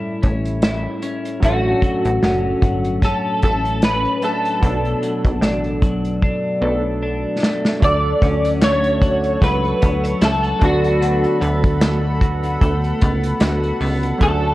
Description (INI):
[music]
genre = indie pop, bedroom pop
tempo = 75 BPM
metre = 4/4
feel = swing 55% on 16ths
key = unclear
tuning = A4 = 440 Hz
[part]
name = electric guitar at the edge of break-up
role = melody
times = 0.0-14.5 s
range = F#4 to E5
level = -20 LUFS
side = equal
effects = ensemble chorus, analog delay
[part]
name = chorused retro synth keys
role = accompaniment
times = 0.0-14.5 s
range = F#3 to B4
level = -27 LUFS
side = right 3 dB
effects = tremolo, cassette tape
[part]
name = twelve-string electric guitar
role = accompaniment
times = 0.0-14.5 s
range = A2 to F#4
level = -24 LUFS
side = left 2 dB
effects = wide subtle chorus, warbly pitch drift
[part]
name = plucky analog bass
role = bass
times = 0.2-14.5 s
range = F#1 to D2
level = -22 LUFS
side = equal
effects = none
[part]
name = unplugged drum kit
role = drums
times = 0.2-14.4 s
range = hi-hat, kick drum, snare drum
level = -18 LUFS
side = equal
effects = none
[part]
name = lush unison pad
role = sustained chords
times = 7.8-14.5 s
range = A4 to C#6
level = -27 LUFS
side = equal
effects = chorus
[part]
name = group handclap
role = percussion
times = 8.6-13.6 s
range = none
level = -34 LUFS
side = left 2 dB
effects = none
[sound]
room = moderate spring reverb, RT60 2.4 s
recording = worn, warbling old tape, cassette tape, warbly pitch drift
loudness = -16 LUFS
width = side -16 dB against mid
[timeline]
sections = 0.0-7.8 A section; 7.8-14.5 B section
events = drum fill 6.2-7.8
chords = 0.0 A7; 1.4 Dmaj7; 4.6 Bm7; 7.8 Dmaj7; 10.6 Bm7/D